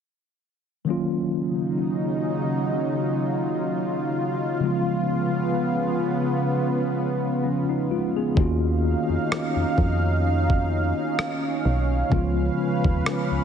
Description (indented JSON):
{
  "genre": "contemporary R&B",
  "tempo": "64 BPM",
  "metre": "4/4",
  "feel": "swing 54% on 16ths",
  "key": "Eb minor",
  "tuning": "A4 = 440 Hz",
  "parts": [
    { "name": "mellow tine electric piano", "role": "accompaniment", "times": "0.8-13.4 s", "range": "Db3 to Ab4", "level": "-26 LUFS", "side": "left 1 dB", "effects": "medium stereo tremolo" },
    { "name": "lush unison pad", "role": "sustained chords", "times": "0.9-13.4 s", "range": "Db3 to F5", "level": "-25 LUFS", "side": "right 1 dB", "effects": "chorus, sidechain pumping" },
    { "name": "solid FM bass", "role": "bass", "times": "8.4-13.4 s", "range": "Cb2 to F2", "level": "-23 LUFS", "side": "equal", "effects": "none" },
    { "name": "dusty soul sampler-style drum kit", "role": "drums", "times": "8.4-13.3 s", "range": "kick drum, rim click", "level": "-25 LUFS", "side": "equal", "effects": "none" }
  ],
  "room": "light reverb",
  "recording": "heavily compressed radio sound, nothing above 11.0 kHz",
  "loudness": "-21 LUFS",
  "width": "side -8 dB against mid",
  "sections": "0.9-8.4 A section; 8.4-13.4 B section",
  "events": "none",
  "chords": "0.9 Ebm9; 4.6 Db7; 8.4 Ebm9; 12.1 Db7"
}